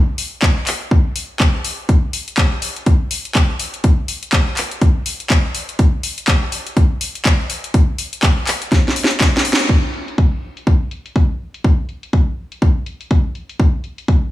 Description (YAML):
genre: house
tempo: 123 BPM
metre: 4/4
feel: swing 59% on 16ths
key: none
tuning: none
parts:
  - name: house drum kit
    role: drums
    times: 0.2-14.2 s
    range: crash cymbal, handclaps, hi-hat, snare drum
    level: -19 LUFS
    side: left 1 dB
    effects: overdrive, low-pass filter on hats, small room ambience, low-pass filter on snare, low-pass filter on cymbals
  - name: electronic kick drum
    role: drums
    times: 0.4-14.2 s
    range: none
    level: -14 LUFS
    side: equal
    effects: overdrive, small room ambience
room: light reverb, digital ambience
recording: small room ambience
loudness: -15 LUFS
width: side -15 dB against mid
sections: 0.0-9.7 A section; 9.7-14.3 B section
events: drum fill 8.7-9.7; band accent 9.5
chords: none